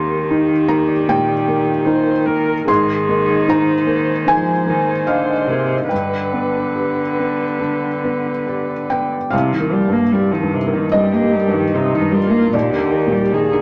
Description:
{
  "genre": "neoclassical piano and strings",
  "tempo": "69-78 BPM",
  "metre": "4/4",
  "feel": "rubato",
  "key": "C minor",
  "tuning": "A4 = 439 Hz",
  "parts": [
    { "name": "muted cello", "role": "second line", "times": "0.0-13.6 s", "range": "Bb2 to Bb3", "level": "-22 LUFS", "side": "equal", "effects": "none" },
    { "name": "felt-muted upright piano", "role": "accompaniment", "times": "0.0-13.6 s", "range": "C2 to C6", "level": "-20 LUFS", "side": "equal", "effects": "none" },
    { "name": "muted viola", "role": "accompaniment", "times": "0.0-13.6 s", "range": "Eb4 to C5", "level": "-24 LUFS", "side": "equal", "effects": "none" },
    { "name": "concert harp", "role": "arpeggios", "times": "0.0-13.6 s", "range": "Bb3 to Ab5", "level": "-30 LUFS", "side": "equal", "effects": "none" }
  ],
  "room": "moderate studio ambience, RT60 0.5 s",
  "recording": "none",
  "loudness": "-17 LUFS",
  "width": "mono",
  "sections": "0.0-9.3 A section; 9.3-13.6 B section",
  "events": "none",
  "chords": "0.0 Ebmaj7; 2.7 Abadd9; 5.9 G; 9.3 Cm7; 12.5 Ebmaj7"
}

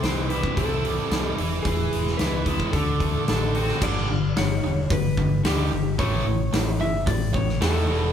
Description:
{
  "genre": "classic rock",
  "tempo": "111 BPM",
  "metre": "4/4",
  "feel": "straight",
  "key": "A mixolydian from 3.8 s",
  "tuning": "A4 = 440 Hz",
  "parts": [
    { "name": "clean lap steel guitar", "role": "melody", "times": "0.0-8.1 s", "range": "G4 to E5", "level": "-30 LUFS", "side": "left 1 dB", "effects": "none" },
    { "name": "crunchy overdriven guitar", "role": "riff", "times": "0.0-8.1 s", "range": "E2 to F#4", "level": "-28 LUFS", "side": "left 8 dB", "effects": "none" },
    { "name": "tight distorted guitar", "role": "riff", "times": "0.0-8.1 s", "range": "E2 to E4", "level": "-29 LUFS", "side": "right 7 dB", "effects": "distortion" },
    { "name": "fingered electric bass", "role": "bass", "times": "0.0-8.1 s", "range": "E1 to E2", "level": "-27 LUFS", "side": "equal", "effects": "none" },
    { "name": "big rock drum kit", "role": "drums", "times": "0.0-7.7 s", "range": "crash cymbal, hi-hat, kick drum, snare drum", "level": "-26 LUFS", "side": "equal", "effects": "none" }
  ],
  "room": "moderate large studio reverb, RT60 1.3 s",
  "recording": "band playing live in one room",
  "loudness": "-21 LUFS",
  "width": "side -9 dB against mid",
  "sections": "0.0-3.8 A section; 3.8-8.1 B section",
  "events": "none",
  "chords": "0.0 C; 1.4 E; 2.7 D7; 3.8 G; 6.0 A"
}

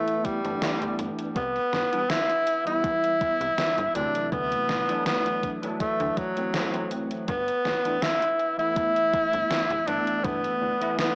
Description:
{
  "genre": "vaporwave",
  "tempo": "81 BPM",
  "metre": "4/4",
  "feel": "swing 53% on 16ths",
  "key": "G major",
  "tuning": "A4 = 439 Hz",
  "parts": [
    { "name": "breathy tenor saxophone", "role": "melody", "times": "0.0-11.2 s", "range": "F#3 to E4", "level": "-24 LUFS", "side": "equal", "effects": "vintage 12-bit sampler grit, cassette tape, tape echo" },
    { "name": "bell-like tine electric piano", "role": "accompaniment", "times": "0.0-11.2 s", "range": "C3 to E4", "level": "-31 LUFS", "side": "equal", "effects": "medium stereo tremolo, ensemble chorus" },
    { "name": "gated 80s digital drum machine", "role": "drums", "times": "0.1-11.1 s", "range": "hi-hat, snare drum", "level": "-31 LUFS", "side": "equal", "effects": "gated reverb, gated reverb snare, overdrive, cassette tape" },
    { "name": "electronic kick drum", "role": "drums", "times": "0.2-10.4 s", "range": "none", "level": "-34 LUFS", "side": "equal", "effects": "overdrive, cassette tape" },
    { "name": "slap-like FM bass", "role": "bass", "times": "0.4-10.7 s", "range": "D1 to D2", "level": "-35 LUFS", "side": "equal", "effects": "tube saturation" }
  ],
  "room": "wet spring reverb, RT60 2.4 s",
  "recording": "home recording on cassette, small speaker sound",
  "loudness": "-23 LUFS",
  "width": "side -35 dB against mid",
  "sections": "0.0-11.2 A section",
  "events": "none",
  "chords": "0.0 G6; 1.4 Cmaj7; 4.0 D9; 7.3 G6"
}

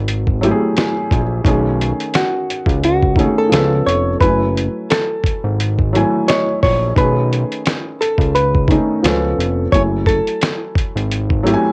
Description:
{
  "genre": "lo-fi hip hop",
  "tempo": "87 BPM",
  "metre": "4/4",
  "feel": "swing 58% on 16ths",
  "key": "F# dorian",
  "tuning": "A4 = 442 Hz",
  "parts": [
    { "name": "felt-muted upright piano", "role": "accompaniment", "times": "0.0-11.7 s", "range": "D#3 to G#5", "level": "-21 LUFS", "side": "equal", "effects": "cassette tape" },
    { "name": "fat analog bass", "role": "bass", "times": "0.0-11.6 s", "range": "E#1 to C#2", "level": "-21 LUFS", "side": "equal", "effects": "none" },
    { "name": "dusty soul sampler-style drum kit", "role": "drums", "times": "0.1-11.6 s", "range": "finger snaps, hi-hat, kick drum, snare drum", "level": "-20 LUFS", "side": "equal", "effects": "cassette tape" },
    { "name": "hollow-body jazz guitar", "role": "melody", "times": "2.2-11.7 s", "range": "F#4 to C#5", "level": "-21 LUFS", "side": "equal", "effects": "none" }
  ],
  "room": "light reverb",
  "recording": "home recording on cassette",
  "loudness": "-16 LUFS",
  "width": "mono",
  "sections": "0.0-11.7 A section",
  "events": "none",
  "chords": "0.0 F#m9; 1.4 B13; 3.5 C#aug7; 4.2 F#m9; 7.0 B13; 9.0 C#aug7; 9.7 F#m9"
}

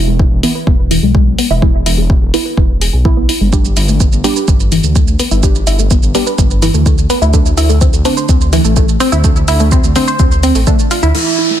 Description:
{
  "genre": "melodic techno",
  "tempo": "126 BPM",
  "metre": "4/4",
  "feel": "straight",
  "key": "unclear",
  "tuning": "A4 = 440 Hz",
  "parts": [
    { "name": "tight sequenced synth", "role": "arpeggios", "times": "0.0-11.6 s", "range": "E3 to C5", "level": "-16 LUFS", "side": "equal", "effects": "chorus, phaser, cassette tape, sidechain pumping, digital delay" },
    { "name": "filtered dub chord stab", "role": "stabs", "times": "0.0-11.6 s", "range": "A2 to G4", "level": "-20 LUFS", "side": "right 4 dB", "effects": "phaser, sidechain pumping, digital delay" },
    { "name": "dark detuned saw bass", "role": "bass", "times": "0.0-11.1 s", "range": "E1 to D2", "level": "-14 LUFS", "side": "equal", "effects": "sidechain pumping" },
    { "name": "electronic kick drum", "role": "drums", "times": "0.2-10.8 s", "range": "none", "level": "-12 LUFS", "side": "equal", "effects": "none" },
    { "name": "deep house drum kit", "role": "drums", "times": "0.4-11.2 s", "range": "crash cymbal, hi-hat, shaker", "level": "-20 LUFS", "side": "right 1 dB", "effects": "sidechain pumping on hats, sidechain pumping on perc, sidechain pumping on cymbals" },
    { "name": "fat analog lead", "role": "melody", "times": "11.1-11.6 s", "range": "E4", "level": "-14 LUFS", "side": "right 8 dB", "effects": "analog chorus, sidechain pumping" },
    { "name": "downlifter", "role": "sound effects", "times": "11.1-11.6 s", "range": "none", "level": "-16 LUFS", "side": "equal", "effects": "none" }
  ],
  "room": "light reverb",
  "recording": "dense, heavily limited modern master",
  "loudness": "-9 LUFS",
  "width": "side -11 dB against mid",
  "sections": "0.0-11.1 A section",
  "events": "filter sweep on synth arpeggio sound 0.0-11.1",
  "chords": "0.0 E; 3.5 G; 7.3 D5"
}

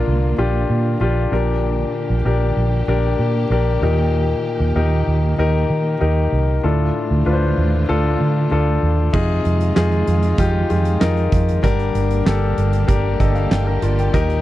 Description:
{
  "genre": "piano-driven pop",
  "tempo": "96 BPM",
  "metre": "4/4",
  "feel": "straight",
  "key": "unclear",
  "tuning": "A4 = 441 Hz",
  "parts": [
    { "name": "warm concert grand piano", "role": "accompaniment", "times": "0.0-14.4 s", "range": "G2 to Bb5", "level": "-20 LUFS", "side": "left 4 dB", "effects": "none" },
    { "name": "warm studio string section", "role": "sustained chords", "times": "0.0-14.4 s", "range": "D3 to G4", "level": "-28 LUFS", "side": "right 4 dB", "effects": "none" },
    { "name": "vintage muted fingered electric bass", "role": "bass", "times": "0.1-14.4 s", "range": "G1 to Eb3", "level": "-18 LUFS", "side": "right 1 dB", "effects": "none" },
    { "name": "huge arena drum kit", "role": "drums", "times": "9.1-14.4 s", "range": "crash cymbal, handclaps, hi-hat, kick drum, snare drum", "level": "-21 LUFS", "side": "right 1 dB", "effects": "none" }
  ],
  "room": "little or no reverb",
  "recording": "dry, close 1970s-style studio recording",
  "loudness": "-15 LUFS",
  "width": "side -14 dB against mid",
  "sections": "0.0-9.1 A section; 9.1-14.4 B section",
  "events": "grand piano fill 12.9-14.1",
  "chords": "0.0 Bb; 1.3 Gm/Bb; 3.8 Eb; 6.6 Dm; 9.1 Fm7; 11.6 Gm"
}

